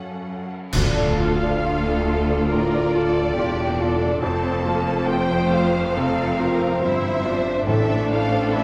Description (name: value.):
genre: cinematic, emotional film score for orchestra.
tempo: 70 BPM.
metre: 4/4.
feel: rubato.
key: D minor.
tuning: A4 = 439 Hz.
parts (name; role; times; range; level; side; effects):
warm symphonic violin section; melody; 0.0-8.6 s; D5 to A5; -31 LUFS; equal; none.
warm symphonic violin section; second line; 0.0-8.6 s; G4 to C5; -29 LUFS; equal; none.
felt-muted upright piano; accompaniment; 0.0-8.6 s; D2 to D5; -28 LUFS; equal; none.
rich symphonic viola section; accompaniment; 0.0-8.6 s; A3 to F4; -31 LUFS; equal; none.
rich symphonic cello section; bass; 0.0-8.6 s; D2 to A2; -29 LUFS; equal; none.
mellow French horn section; sustained chords; 0.7-8.6 s; E3 to F4; -31 LUFS; equal; none.
clear symphonic double bass section; bass; 0.7-8.6 s; E1 to D2; -30 LUFS; equal; none.
clash cymbals and concert bass drum; percussion; 0.7-2.5 s; none; -31 LUFS; equal; none.
timpani; percussion; 7.7-8.6 s; A2; -28 LUFS; equal; none.
room: wet recital hall reverb, RT60 1.5 s.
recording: recorded in a church or concert hall.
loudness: -21 LUFS.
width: mono.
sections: 0.7-8.6 A section.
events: band accent 0.7-1.6.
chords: 0.0 F#m; 0.7 Dm; 4.2 F; 7.7 Am.